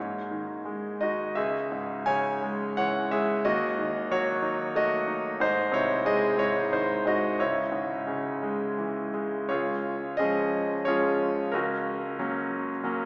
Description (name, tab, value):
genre	classical, lyrical solo piano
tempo	83-94 BPM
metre	3/4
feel	rubato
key	C# minor, Db major from 9.5 s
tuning	A4 = 440 Hz
part	bright concert grand piano	solo	0.0-13.1 s	C#2 to G#5	-28 LUFS	equal	none
room	wet cathedral reverb, RT60 4.4 s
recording	recorded in a church or concert hall, small speaker sound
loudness	-28 LUFS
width	mono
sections	0.0-9.5 A section; 9.5-13.1 B section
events	none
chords	0.0 G#5; 1.4 C#m; 3.5 D#dim; 5.4 G#; 7.4 C#m; 9.5 Db; 11.5 Gb/Db